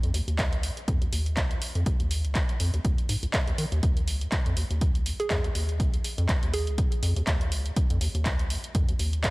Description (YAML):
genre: acid house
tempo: 122 BPM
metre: 4/4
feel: swing 56% on 16ths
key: unclear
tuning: A4 = 439 Hz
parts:
  - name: deep acid bass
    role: riff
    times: 0.0-9.3 s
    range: Db2 to Eb3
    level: -28 LUFS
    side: equal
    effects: overdrive, sidechain pumping
  - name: punchy analog drum machine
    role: drums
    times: 0.0-9.3 s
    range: handclaps, hi-hat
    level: -32 LUFS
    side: equal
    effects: none
  - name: electronic kick drum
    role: drums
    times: 0.4-9.3 s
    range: none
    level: -27 LUFS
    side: equal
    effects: none
  - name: hollow square pluck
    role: melody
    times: 5.2-7.0 s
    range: Ab4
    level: -34 LUFS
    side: right 2 dB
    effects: chorus, tape echo
room: little or no reverb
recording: none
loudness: -24 LUFS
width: side -23 dB against mid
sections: 0.0-9.3 A section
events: filter sweep on acid bass 0.0-9.3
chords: 0.0 Dbsus2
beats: 0.39 0.88 1.37 | 1.86 2.35 2.85 3.34 | 3.83 4.32 4.81 5.30 | 5.80 6.29 6.78 7.27 | 7.76 8.26 8.75 9.24